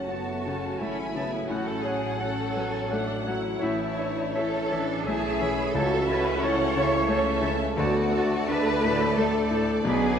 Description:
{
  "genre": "classical",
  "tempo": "77-92 BPM",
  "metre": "3/4",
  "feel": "rubato",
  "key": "F# minor",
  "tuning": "A4 = 440 Hz",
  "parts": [
    { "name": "clear concert grand piano", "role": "melody", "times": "0.0-10.2 s", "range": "B1 to C#5", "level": "-30 LUFS", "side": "left 3 dB", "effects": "none" },
    { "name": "warm studio violin section", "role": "melody", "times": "0.0-10.2 s", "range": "F#5 to B5", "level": "-39 LUFS", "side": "left 2 dB", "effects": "none" },
    { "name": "mellow hollow concert flute", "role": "second line", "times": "0.0-10.2 s", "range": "E5 to C#6", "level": "-35 LUFS", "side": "left 2 dB", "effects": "none" },
    { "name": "rich studio violin section", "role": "second line", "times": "0.0-10.2 s", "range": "C#5 to A5", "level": "-36 LUFS", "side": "left 1 dB", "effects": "none" },
    { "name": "warm studio viola section", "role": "accompaniment", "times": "0.0-10.2 s", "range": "A3 to E4", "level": "-32 LUFS", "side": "equal", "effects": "none" },
    { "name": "warm trombone section", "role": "sustained chords", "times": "0.0-10.2 s", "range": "D3 to C#4", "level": "-34 LUFS", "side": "right 2 dB", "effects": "none" },
    { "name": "rich studio double bass section", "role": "bass", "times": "0.0-10.2 s", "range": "F#1 to D2", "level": "-35 LUFS", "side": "right 5 dB", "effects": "none" },
    { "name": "warm studio cello section", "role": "bass", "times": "0.0-10.2 s", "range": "E4 to C#5", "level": "-31 LUFS", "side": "right 2 dB", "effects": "none" },
    { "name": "timpani", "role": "percussion", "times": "0.0-0.4, 5.7-6.7 s", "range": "F#2 to C#3", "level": "-41 LUFS", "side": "right 3 dB", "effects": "none" },
    { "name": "clear oboe", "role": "second line", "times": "0.1-10.0 s", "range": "E5 to B5", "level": "-39 LUFS", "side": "right 2 dB", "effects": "none" },
    { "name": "dark clarinet", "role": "second line", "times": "0.1-10.0 s", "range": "C#5 to D5", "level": "-36 LUFS", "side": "left 1 dB", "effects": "none" },
    { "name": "warm French horn section", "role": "sustained chords", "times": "0.1-10.2 s", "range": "F#3 to F#4", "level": "-34 LUFS", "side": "left 2 dB", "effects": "none" }
  ],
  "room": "wet concert hall reverb, RT60 2.2 s",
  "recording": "none",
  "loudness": "-23 LUFS",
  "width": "side -8 dB against mid",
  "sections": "0.0-10.2 A section",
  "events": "none",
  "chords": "0.0 F#m; 1.5 F#m/A; 3.6 A; 5.8 A/C#; 7.8 D"
}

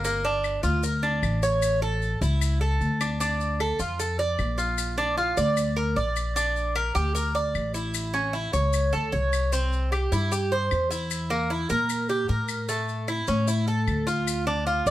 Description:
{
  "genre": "latin, Cuban son and guajira",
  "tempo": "152 BPM",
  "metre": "4/4",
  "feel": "straight",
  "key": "D minor from 3.2 s",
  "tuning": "A4 = 440 Hz",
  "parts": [
    { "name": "Cuban tres", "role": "arpeggios", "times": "0.0-14.9 s", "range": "A3 to D5", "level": "-26 LUFS", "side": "right 1 dB", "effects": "none" },
    { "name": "upright bass", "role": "bass", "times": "0.0-14.9 s", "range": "G1 to Bb2", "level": "-26 LUFS", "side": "equal", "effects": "none" },
    { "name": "maracas", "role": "percussion", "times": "0.0-14.9 s", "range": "none", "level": "-37 LUFS", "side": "left 8 dB", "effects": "none" },
    { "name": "claves", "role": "percussion", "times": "0.4-14.5 s", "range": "none", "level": "-36 LUFS", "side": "left 7 dB", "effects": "none" }
  ],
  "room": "light reverb",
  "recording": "none",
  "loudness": "-23 LUFS",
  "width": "side -14 dB against mid",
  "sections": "0.0-3.2 A section; 3.2-14.9 B section",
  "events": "none",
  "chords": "0.0 Gm7; 1.6 A; 3.2 Dm; 4.8 Bb; 6.4 Gm/Bb; 7.9 A; 9.5 C; 11.1 Edim; 12.7 A; 14.3 Dm"
}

